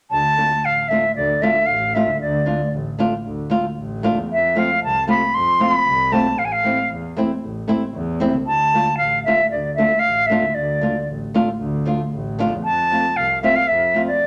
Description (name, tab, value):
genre	klezmer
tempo	115 BPM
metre	4/4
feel	straight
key	D minor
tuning	A4 = 440 Hz
part	bright reedy concert flute	melody	0.1-14.3 s	D5 to C6	-19 LUFS	equal	none
part	warm double bass	bass	0.1-14.3 s	A1 to F2	-29 LUFS	equal	none
part	flamenco guitar	accompaniment	0.4-14.1 s	A3 to F4	-23 LUFS	equal	none
room	wet studio reverb, RT60 0.8 s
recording	none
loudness	-19 LUFS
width	mono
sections	0.1-14.3 A section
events	none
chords	0.1 Dm; 4.3 F; 6.4 Am; 8.5 Dm; 12.6 F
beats	| 0.12 0.64 1.16 1.69 | 2.21 2.73 3.25 3.78 | 4.30 4.82 5.34 5.86 | 6.38 6.91 7.43 7.95 | 8.47 8.99 9.51 10.04 | 10.56 11.08 11.60 12.12 | 12.64 13.17 13.69 14.21